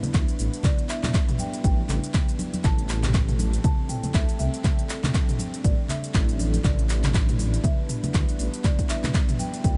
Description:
afro house; 120 BPM; 4/4; swing 58% on 16ths; A minor; A4 = 440 Hz
marimba with medium mallets; melody; 0.0-9.8 s; D5 to A5; -40 LUFS; equal; vintage 12-bit sampler grit, tape echo
dark analog pad; sustained chords; 0.0-9.8 s; G3 to B4; -37 LUFS; equal; chorus, phaser, sidechain pumping
deep house drum kit; drums; 0.0-9.8 s; handclaps, hi-hat, shaker, toms; -34 LUFS; equal
congas; percussion; 0.0-9.5 s; -34 LUFS; equal
dark detuned saw bass; bass; 0.1-9.8 s; A1 to D2; -28 LUFS; equal; tube saturation, sidechain pumping
electronic kick drum; drums; 0.1-9.8 s; -25 LUFS; equal; overdrive
light reverb, digital ambience; nothing above 10.9 kHz; -24 LUFS; mono
0.0-9.8 A section
0.0 Em7/A; 2.6 Am7; 6.6 Em7/A
0.14 | 0.64 1.14 1.64 2.14 | 2.64 3.14 3.64 4.14 | 4.64 5.14 5.64 6.14 | 6.64 7.14 7.64 8.14 | 8.64 9.14 9.64

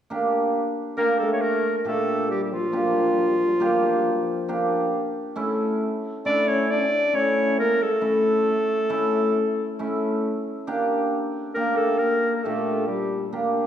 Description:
klezmer; 68 BPM; 3/4; straight; G dorian sharp4; A4 = 438 Hz
cimbalom; accompaniment; 0.1-13.7 s; Bb2 to G4; -24 LUFS; right 1 dB
warm clarinet; melody; 1.0-13.3 s; F4 to D5; -23 LUFS; equal
clear trombone; second line; 1.0-13.3 s; F3 to D4; -29 LUFS; left 4 dB
wet scoring stage reverb, RT60 1.6 s; recorded in a church or concert hall; -21 LUFS; side -9 dB against mid
0.1-13.7 A section
0.1 Gm; 5.4 A; 10.7 Gm
| 0.10 0.98 1.86 | 2.74 3.62 4.50 | 5.38 6.26 7.14 | 8.02 8.90 9.79 | 10.67 11.55 12.44 | 13.32

